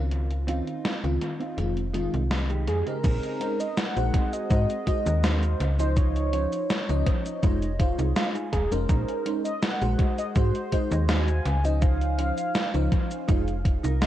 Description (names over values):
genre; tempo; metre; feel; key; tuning
vaporwave; 82 BPM; 4/4; straight; unclear; A4 = 440 Hz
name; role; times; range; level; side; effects
FM electric piano with soft pad layer; accompaniment; 0.0-14.1 s; Db3 to F5; -31 LUFS; equal; phaser, lush chorus, analog delay
mellow electric guitar; riff; 0.0-14.1 s; Ab3 to Bb5; -35 LUFS; right 4 dB; analog chorus, analog delay
slap-like FM bass; bass; 0.0-14.1 s; Eb1 to Ab2; -25 LUFS; equal; none
gated 80s digital drum machine; drums; 0.1-14.1 s; cabasa, crash cymbal, hi-hat, snare drum; -31 LUFS; equal; gated reverb, gated reverb snare, analog delay
warm velvety synth lead; melody; 2.7-13.3 s; Ab4 to Ab5; -31 LUFS; equal; chorus, tape echo
electronic kick drum; drums; 3.0-13.8 s; none; -24 LUFS; equal; none
room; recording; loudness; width
light reverb; echo-heavy mix, cassette tape; -23 LUFS; side -12 dB against mid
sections
0.0-3.0 A section; 3.0-14.1 B section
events
filter sweep on drum 0.0-3.0; clean electric guitar fill 6.7-8.9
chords
0.1 Dbmaj9; 1.6 Fm7; 3.0 Bbm11; 4.1 Ab7; 6.0 Dbmaj9; 7.4 Fm7; 8.9 Bbm11; 10.0 Ab7; 11.8 Dbmaj9; 13.3 Fm7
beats
| 0.11 0.85 1.58 2.31 | 3.04 3.77 4.50 5.24 | 5.97 6.70 7.43 8.16 | 8.89 9.63 10.36 11.09 | 11.82 12.55 13.29 14.02